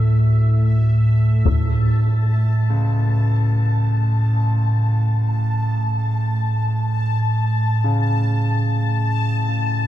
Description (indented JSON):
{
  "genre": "dark ambient drone",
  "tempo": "free time",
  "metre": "none",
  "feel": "none",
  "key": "unclear",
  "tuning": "A4 = 440 Hz",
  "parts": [
    { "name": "dark analog pad", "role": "sustained chords", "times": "0.0-1.5 s", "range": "A3 to A4", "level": "-44 LUFS", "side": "equal", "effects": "none" },
    { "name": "clear grand piano", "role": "arpeggios", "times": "0.0-9.9 s", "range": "C#2 to A4", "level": "-32 LUFS", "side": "left 4 dB", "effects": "ping-pong delay" },
    { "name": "deep rumbling drone", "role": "drone", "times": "0.0-9.9 s", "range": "D2 to A2", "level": "-17 LUFS", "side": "right 1 dB", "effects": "built-in reverb" },
    { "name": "bubbling stepped-filter texture", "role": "texture", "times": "0.0-9.9 s", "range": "E5 to A5", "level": "-28 LUFS", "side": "left 4 dB", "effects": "chorus, built-in reverb" },
    { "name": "taiko ensemble", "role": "percussion", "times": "1.5-1.7 s", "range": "none", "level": "-22 LUFS", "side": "left 2 dB", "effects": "low-pass filter on perc" }
  ],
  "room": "moderate huge ambient reverb, RT60 6.9 s",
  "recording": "none",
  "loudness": "-16 LUFS",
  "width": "side -13 dB against mid",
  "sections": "0.0-1.5 A section; 1.5-9.9 B section",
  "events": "none",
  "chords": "0.0 A5; 1.5 A/C#"
}